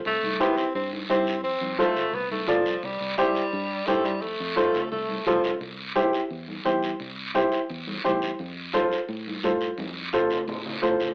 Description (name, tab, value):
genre	latin, cumbia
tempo	173 BPM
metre	4/4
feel	straight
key	C major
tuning	A4 = 440 Hz
part	fingered electric bass	bass	0.0-11.1 s	C2 to A2	-37 LUFS	equal	none
part	clear tenor saxophone	second line	0.1-5.6 s	F3 to C4	-28 LUFS	equal	cassette tape
part	congas	percussion	0.1-11.1 s	none	-35 LUFS	equal	none
part	guiro	percussion	0.1-11.1 s	none	-35 LUFS	right 1 dB	none
part	warm upright piano	accompaniment	0.4-11.1 s	E4 to D5	-23 LUFS	equal	cassette tape
room	wet studio reverb, RT60 0.6 s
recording	home recording on cassette, AM radio sound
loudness	-23 LUFS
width	side -30 dB against mid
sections	0.0-5.6 A section; 5.6-11.1 B section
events	drum fill 9.8-11.1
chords	0.1 C; 1.4 F; 2.8 C; 4.2 F; 5.6 C; 8.4 F